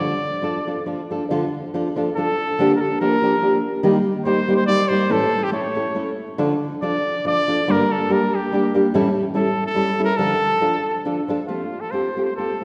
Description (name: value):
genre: mexican folk, mariachi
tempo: 141 BPM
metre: 3/4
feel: swing 53% on 8ths, rubato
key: D harmonic minor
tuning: A4 = 440 Hz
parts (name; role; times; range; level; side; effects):
- clear trumpet; melody; 0.0-12.6 s; F4 to D5; -25 LUFS; equal; none
- nylon-string guitar; accompaniment; 0.0-12.6 s; G2 to A4; -22 LUFS; equal; none
room: wet concert hall reverb, RT60 2.1 s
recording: heard from further back in the room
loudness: -20 LUFS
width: mono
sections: 0.0-1.3 A section; 1.3-11.5 A section; 11.5-12.6 B section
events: none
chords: 0.0 Dm; 2.6 Gm7/D; 3.8 Eb; 5.1 A; 6.4 Dm; 7.7 Gm; 8.9 A7; 10.2 Dm; 11.5 Fadd9